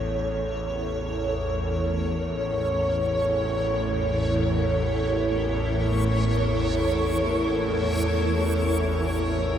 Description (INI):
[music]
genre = dark ambient drone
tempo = free time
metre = none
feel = none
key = unclear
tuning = A4 = 440 Hz
[part]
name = granular cloud pad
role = sustained chords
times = 0.0-9.6 s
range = E4 to C#5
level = -27 LUFS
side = equal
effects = built-in reverb
[part]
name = bowed-like drone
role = drone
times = 0.0-9.6 s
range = A1 to E2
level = -26 LUFS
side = equal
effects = built-in reverb, phaser
[part]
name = backwards swelling texture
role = texture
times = 0.0-9.6 s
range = C#5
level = -29 LUFS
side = right 2 dB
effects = built-in reverb
[sound]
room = wet huge ambient reverb, RT60 8.6 s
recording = none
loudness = -22 LUFS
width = side -9 dB against mid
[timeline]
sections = 0.0-9.6 A section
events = none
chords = 0.0 C#m/A